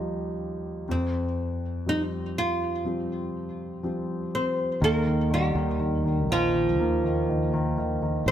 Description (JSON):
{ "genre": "pop ballad", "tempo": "61 BPM", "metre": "4/4", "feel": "straight", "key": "unclear", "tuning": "A4 = 436 Hz", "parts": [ { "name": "nylon-string guitar", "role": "melody", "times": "0.0-8.3 s", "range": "F3 to C5", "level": "-27 LUFS", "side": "right 1 dB", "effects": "tape echo" }, { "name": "warm concert grand piano", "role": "accompaniment", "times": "0.0-8.3 s", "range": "Eb2 to Eb4", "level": "-29 LUFS", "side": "left 1 dB", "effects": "none" }, { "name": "sustaining fretless electric bass", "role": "bass", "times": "4.8-8.3 s", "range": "A1 to Eb2", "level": "-27 LUFS", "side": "equal", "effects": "none" } ], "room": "light reverb, small room ambience", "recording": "none", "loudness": "-24 LUFS", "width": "side -10 dB against mid", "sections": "0.0-4.8 A section; 4.8-8.3 B section", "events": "none", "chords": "0.0 Ebadd9; 0.9 Fsus2; 4.8 Ebadd9", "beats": "| 0.89 1.87 2.85 3.84 | 4.82 5.80 6.79 7.77" }